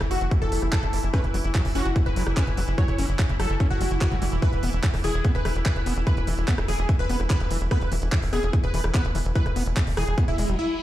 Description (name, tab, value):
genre	psychedelic trance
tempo	146 BPM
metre	4/4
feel	straight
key	unclear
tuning	A4 = 440 Hz
part	pulsing gated texture	sustained chords	0.0-10.6 s	E3 to E4	-33 LUFS	equal	chorus, built-in reverb, sidechain pumping
part	tight sequencer bass	bass	0.0-10.6 s	E1 to F#1	-25 LUFS	equal	none
part	garage drum kit	drums	0.0-10.6 s	handclaps, hi-hat, rim click	-33 LUFS	equal	none
part	supersaw stab	melody	0.1-10.8 s	E4 to C#5	-31 LUFS	equal	phaser, vintage 12-bit sampler grit, sidechain pumping, tape echo
part	electronic kick drum	drums	0.3-10.3 s	none	-24 LUFS	equal	none
part	screaming distorted acid line	riff	1.1-10.6 s	E3 to C#4	-33 LUFS	left 2 dB	distortion, chorus, auto-pan, sidechain pumping, tape echo
part	reverse cymbal	sound effects	10.4-10.8 s	none	-38 LUFS	left 3 dB	none
room	little or no reverb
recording	played on a big sound system in a bare room, large studio reverb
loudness	-21 LUFS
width	side -14 dB against mid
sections	0.0-10.8 A section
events	reverse cymbal 10.4-10.8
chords	0.0 F#5; 4.4 E5